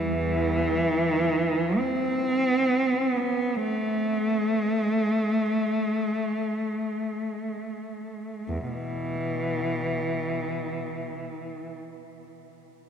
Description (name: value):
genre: classical, free, expressive piece for unaccompanied cello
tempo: free time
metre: none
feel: none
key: unclear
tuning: A4 = 439 Hz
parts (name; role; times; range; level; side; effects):
- rich cello; solo; 0.0-11.7 s; E2 to C4; -25 LUFS; equal; none
room: wet cathedral reverb, RT60 5.1 s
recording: none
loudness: -24 LUFS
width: side -8 dB against mid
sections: 0.0-8.5 A section; 8.5-12.9 B section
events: slowing down 0.0-8.5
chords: none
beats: free time